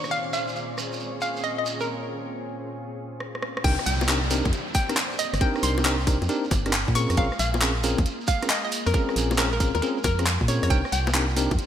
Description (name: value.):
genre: UK garage, two-step garage.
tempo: 136 BPM.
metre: 4/4.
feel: swing 67% on 16ths.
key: C phrygian.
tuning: A4 = 440 Hz.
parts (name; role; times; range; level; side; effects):
hollow square pluck; melody; 0.0-11.1 s; Bb4 to Db6; -29 LUFS; equal; chorus, ping-pong delay.
warm analog pad; sustained chords; 0.0-11.7 s; Bb2 to D5; -36 LUFS; left 1 dB; lush chorus, sidechain pumping.
garage drum kit; drums; 0.0-11.7 s; bongos, crash cymbal, handclaps, hi-hat, rim click; -28 LUFS; equal; overdrive, studio reverb, gated reverb.
shekere; percussion; 0.0-11.7 s; none; -34 LUFS; right 4 dB; none.
granular cloud pad; texture; 0.0-1.9 s; Eb3 to Db6; -38 LUFS; left 1 dB; built-in reverb, sidechain pumping.
bell-like tine electric piano; stabs; 3.6-11.5 s; C4 to Bb4; -28 LUFS; left 1 dB; fast stereo tremolo.
organ-like FM bass; bass; 3.6-11.6 s; G1 to Bb2; -26 LUFS; equal; tube saturation.
electronic kick drum; drums; 3.6-11.6 s; none; -24 LUFS; equal; overdrive, studio reverb.
downlifter; sound effects; 3.6-7.2 s; none; -35 LUFS; equal; none.
room: moderate lush hall reverb, RT60 1.9 s.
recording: bright 1980s-style digital production.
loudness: -22 LUFS.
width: side -10 dB against mid.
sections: 0.0-3.6 A section; 3.6-11.7 B section.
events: break 1.9-3.6; drum fill 3.2-3.6; drop 3.6-11.7.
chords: 0.0 Bbm9; 3.6 Cm9; 7.0 Bbm9; 10.7 Cm9.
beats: | 0.12 0.56 1.00 1.44 | 1.88 2.32 2.76 3.20 | 3.65 4.09 4.53 4.97 | 5.41 5.85 6.29 6.73 | 7.17 7.62 8.06 8.50 | 8.94 9.38 9.82 10.26 | 10.70 11.14 11.59.